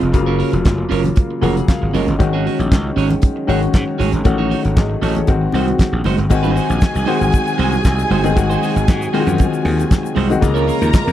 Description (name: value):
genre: disco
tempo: 117 BPM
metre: 4/4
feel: straight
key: unclear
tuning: A4 = 440 Hz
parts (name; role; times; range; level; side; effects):
- clean electric guitar; accompaniment; 0.0-11.1 s; Ab3 to Db5; -22 LUFS; right 10 dB; none
- clear concert grand piano; accompaniment; 0.0-11.1 s; Db3 to Gb5; -20 LUFS; left 6 dB; none
- dark French horn section; sustained chords; 0.0-11.1 s; C3 to Gb4; -26 LUFS; right 3 dB; none
- gritty slap bass; bass; 0.0-11.1 s; F1 to Ab2; -18 LUFS; equal; overdrive
- damped 70s drum kit; drums; 0.0-11.1 s; crash cymbal, handclaps, hi-hat, kick drum, snare drum; -14 LUFS; equal; none
- congas; percussion; 0.1-11.1 s; none; -26 LUFS; left 3 dB; none
- dark studio string section; second line; 6.3-11.1 s; Ab4 to Bb5; -23 LUFS; right 1 dB; none
- tube shaker; percussion; 6.3-11.1 s; none; -40 LUFS; left 18 dB; none
room: little or no reverb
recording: dry, close 1970s-style studio recording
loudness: -14 LUFS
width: side -12 dB against mid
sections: 0.0-6.3 A section; 6.3-11.1 B section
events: grand piano fill 1.2-2.2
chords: 0.1 Gbmaj7; 2.2 Ab7sus4; 4.3 Gbm6; 5.3 Ab7; 10.4 Db6